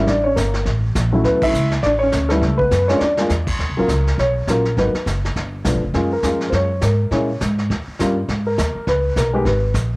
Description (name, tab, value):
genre	jazz piano trio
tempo	205 BPM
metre	4/4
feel	swing 60% on 8ths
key	Eb minor from 3.6 s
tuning	A4 = 440 Hz
part	dark upright piano	melody	0.0-9.7 s	F3 to E5	-18 LUFS	equal	cassette tape
part	upright bass	bass	0.0-10.0 s	F1 to Bb2	-20 LUFS	equal	tube saturation
part	vintage brush drum kit	drums	0.1-10.0 s	brushed snare drum, crash cymbal, hi-hat, kick drum, snare drum	-26 LUFS	equal	cassette tape
room	light reverb, small room ambience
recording	home recording on cassette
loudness	-16 LUFS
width	side -24 dB against mid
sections	0.0-3.6 A section; 3.6-10.0 B section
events	band accent 1.4; drum fill 3.0; upright piano solo 3.6-10.0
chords	0.1 A7b9; 1.2 Dmaj9; 2.4 C#5; 3.0 A# (rootless); 3.6 Ebm7; 4.8 Abm7; 5.4 G9; 5.9 Gbmaj7; 7.1 Bbm7b5; 7.7 Eb7; 8.3 Abmadd9